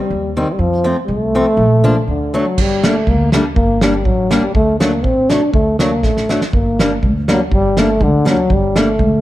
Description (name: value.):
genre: alpine folk, alpine dance band.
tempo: 122 BPM.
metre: 2/4.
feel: straight.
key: G harmonic minor.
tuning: A4 = 438 Hz.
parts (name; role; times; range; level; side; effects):
warm euphonium; melody; 0.0-9.2 s; D3 to D4; -16 LUFS; left 1 dB; none.
upright bass; bass; 0.1-9.2 s; G1 to F2; -19 LUFS; equal; none.
fingerpicked acoustic archtop guitar; accompaniment; 0.4-8.9 s; Eb3 to D4; -19 LUFS; left 1 dB; none.
loose indie drum kit; drums; 2.6-9.1 s; crash cymbal, kick drum, snare drum; -18 LUFS; right 1 dB; none.
room: light reverb.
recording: dark, warm production.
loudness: -12 LUFS.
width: side -15 dB against mid.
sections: 0.0-2.6 A section; 2.6-9.2 B section.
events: drum fill 6.0-6.5.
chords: 0.0 Cm; 0.6 F; 1.6 Bb; 2.1 D; 2.6 Gm; 4.5 D; 6.5 Gm.